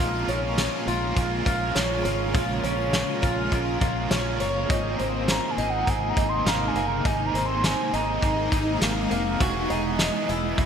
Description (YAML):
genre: dream pop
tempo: 102 BPM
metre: 4/4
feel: straight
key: unclear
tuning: A4 = 443 Hz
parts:
  - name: crunchy overdriven guitar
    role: accompaniment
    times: 0.0-10.7 s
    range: Ab2 to Bb4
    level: -31 LUFS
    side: right 3 dB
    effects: tremolo, wide subtle chorus
  - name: shimmering ambient pad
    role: sustained chords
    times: 0.0-10.7 s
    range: C3 to F#4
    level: -30 LUFS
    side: right 1 dB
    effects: chorus, built-in reverb, phaser
  - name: fingerpicked twelve-string acoustic guitar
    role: arpeggios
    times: 0.0-10.7 s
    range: Bb3 to F#4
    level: -28 LUFS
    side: left 1 dB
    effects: wide subtle chorus, ping-pong delay
  - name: fingered electric bass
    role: bass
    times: 0.0-10.7 s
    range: E1 to Bb1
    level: -30 LUFS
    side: equal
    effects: none
  - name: loose indie drum kit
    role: drums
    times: 0.3-10.7 s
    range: hi-hat, kick drum, snare drum, tambourine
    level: -26 LUFS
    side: equal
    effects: gated reverb
  - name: warbly nostalgic lead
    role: melody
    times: 5.3-9.1 s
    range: Gb5 to C6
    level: -28 LUFS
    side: right 1 dB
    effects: chorus, ping-pong delay
room: wet lush hall reverb, RT60 2.6 s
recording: bright 1980s-style digital production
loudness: -22 LUFS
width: side -7 dB against mid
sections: 0.0-10.7 A section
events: none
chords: 0.0 Bbm7; 4.7 Abadd9; 9.4 Eadd9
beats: 0.58 1.17 1.76 | 2.35 2.94 3.52 4.11 | 4.70 5.29 5.88 6.46 | 7.05 7.64 8.23 8.82 | 9.41 9.99 10.58